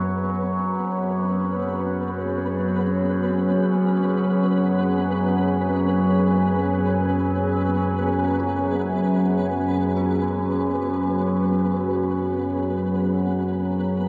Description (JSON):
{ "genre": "dark ambient drone", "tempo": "free time", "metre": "none", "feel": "none", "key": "unclear", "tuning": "A4 = 440 Hz", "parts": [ { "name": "dark analog pad", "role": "sustained chords", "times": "0.0-14.1 s", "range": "F#3 to G#5", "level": "-27 LUFS", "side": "equal", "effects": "chorus, shimmer reverb" }, { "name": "overtone-sweeping drone", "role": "drone", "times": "0.0-14.1 s", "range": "F#2 to F#3", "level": "-25 LUFS", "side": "equal", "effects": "chorus, built-in reverb" }, { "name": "flickering grainy texture", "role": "texture", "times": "0.0-14.1 s", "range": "B3 to B4", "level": "-32 LUFS", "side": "equal", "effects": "built-in reverb, shimmer reverb" }, { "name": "dark detuned synth bell", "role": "arpeggios", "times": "8.4-14.1 s", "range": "E#4 to G#4", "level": "-46 LUFS", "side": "equal", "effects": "none" } ], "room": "wet spring reverb, RT60 2.6 s", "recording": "echo-heavy mix", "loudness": "-22 LUFS", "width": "mono", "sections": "0.0-14.1 A section", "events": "none", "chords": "0.0 C#sus4/F#" }